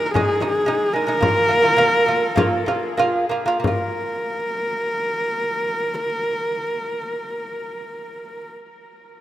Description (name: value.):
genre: mongolian traditional, Mongolian folk.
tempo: 89-116 BPM.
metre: 4/4.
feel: straight.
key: unclear.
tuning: A4 = 440 Hz.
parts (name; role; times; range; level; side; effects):
dark horsehead fiddle; melody; 0.0-8.5 s; Ab4 to Bb4; -21 LUFS; equal; tape echo.
lute; arpeggios; 0.0-8.6 s; Ab3 to F4; -22 LUFS; right 2 dB; none.
frame drum; percussion; 0.2-4.0 s; none; -24 LUFS; left 3 dB; none.
room: moderate lush hall reverb, RT60 3.0 s.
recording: rough home demo mix.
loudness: -18 LUFS.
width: side -13 dB against mid.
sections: 0.0-3.6 A section; 3.6-9.0 B section.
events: slowing down 0.0-3.6.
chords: 0.0 Ab5; 1.2 Bb5.